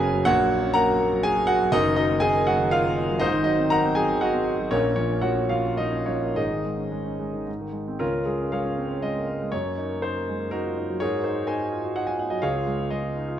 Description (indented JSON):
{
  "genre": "classical, romantic character piece for solo piano",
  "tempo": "104-127 BPM",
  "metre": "3/4",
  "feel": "rubato",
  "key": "Db major",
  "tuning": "A4 = 440 Hz",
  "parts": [
    { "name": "clear concert grand piano", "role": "solo", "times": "0.0-13.4 s", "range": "F#1 to B5", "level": "-22 LUFS", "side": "equal", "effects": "none" }
  ],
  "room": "light reverb",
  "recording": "close, detailed microphones",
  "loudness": "-22 LUFS",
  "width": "side -10 dB against mid",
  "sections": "0.0-8.0 A section; 8.0-13.4 B section",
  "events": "none",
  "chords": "0.3 F#/A#; 1.7 Ebm/Gb; 3.2 Ab7; 4.7 Bbm; 6.4 Absus4; 7.5 Ab; 8.0 Db; 9.5 Ebm/Gb; 11.0 Ab9; 12.4 Db"
}